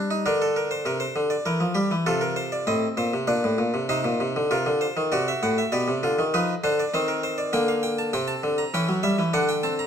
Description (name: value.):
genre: classical, baroque-style 3-part fugue for harpsichord.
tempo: 99 BPM.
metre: 3/4.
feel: straight.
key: C minor from 3.9 s.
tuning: A4 = 444 Hz.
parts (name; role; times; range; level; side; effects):
harpsichord; solo; 0.0-9.9 s; A2 to Bb5; -22 LUFS; equal; none.
room: moderate scoring stage reverb, RT60 1.7 s.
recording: close, detailed microphones.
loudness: -22 LUFS.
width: side -8 dB against mid.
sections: 0.0-3.9 A section; 3.9-9.9 B section.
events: none.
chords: 0.3 Bb/D; 1.5 Em7b5; 2.1 F7/C; 3.3 Bb; 3.9 Cm; 5.1 D7/C; 5.7 G7/B; 6.9 Cm/Eb; 7.5 Gm/D; 8.7 Em69; 9.3 D7.